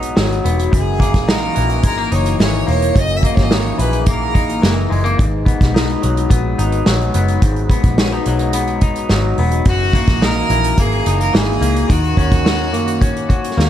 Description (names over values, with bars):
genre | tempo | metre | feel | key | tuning
indie pop, bedroom pop | 107 BPM | 4/4 | straight | G# minor | A4 = 439 Hz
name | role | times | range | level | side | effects
electric guitar through a small old amp | accompaniment | 0.0-13.7 s | F#2 to F#4 | -20 LUFS | left 3 dB | wide subtle chorus, warbly pitch drift
phased analog pad | sustained chords | 0.0-13.7 s | D#3 to B4 | -24 LUFS | left 1 dB | phaser, chorus
picked electric bass | bass | 0.0-13.7 s | E1 to F#2 | -18 LUFS | equal | none
unplugged drum kit | drums | 0.0-13.7 s | hi-hat, kick drum, snare drum | -16 LUFS | equal | none
clear fiddle | melody | 0.8-4.9, 9.7-13.6 s | F#4 to E5 | -21 LUFS | right 2 dB | wide subtle chorus
room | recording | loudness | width
little or no reverb | none | -13 LUFS | side -11 dB against mid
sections
0.0-13.7 A section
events
none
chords
0.0 G#m7; 0.7 F#13; 5.2 G#m7; 9.7 F#13; 11.9 D#m7